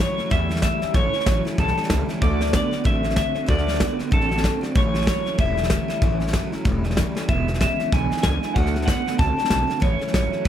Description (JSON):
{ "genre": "rockabilly", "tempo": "189 BPM", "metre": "4/4", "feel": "swing 60% on 8ths", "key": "A major", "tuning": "A4 = 440 Hz", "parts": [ { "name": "electric guitar through a small old amp", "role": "melody", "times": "0.0-10.5 s", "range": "A4 to A5", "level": "-25 LUFS", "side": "left 1 dB", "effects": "wide subtle chorus, tape echo" }, { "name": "picked steel-string acoustic guitar", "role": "accompaniment", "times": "0.0-10.5 s", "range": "E2 to F#4", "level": "-29 LUFS", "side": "left 3 dB", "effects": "none" }, { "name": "electric guitar through a small old amp", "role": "riff", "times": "0.0-10.5 s", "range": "E2 to C4", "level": "-29 LUFS", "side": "right 5 dB", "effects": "tremolo" }, { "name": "upright bass", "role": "bass", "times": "0.0-10.5 s", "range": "E1 to E2", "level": "-25 LUFS", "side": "equal", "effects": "none" }, { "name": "soft brush drum kit", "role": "drums", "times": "0.0-10.5 s", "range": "hi-hat, kick drum, snare drum", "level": "-23 LUFS", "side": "equal", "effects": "none" } ], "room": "light reverb", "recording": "none", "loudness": "-19 LUFS", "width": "side -10 dB against mid", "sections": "0.0-10.5 A section", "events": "drum fill 7.1", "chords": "0.0 A; 2.2 D; 4.8 A; 7.3 E; 8.6 D; 9.8 A", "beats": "0.31 0.63 | 0.95 1.26 1.58 1.90 | 2.22 2.54 2.85 3.17 | 3.49 3.80 4.12 4.44 | 4.75 5.07 5.39 5.71 | 6.02 6.34 6.66 6.97 | 7.29 7.61 7.92 8.24 | 8.55 8.87 9.19 9.51 | 9.82 10.14 10.46" }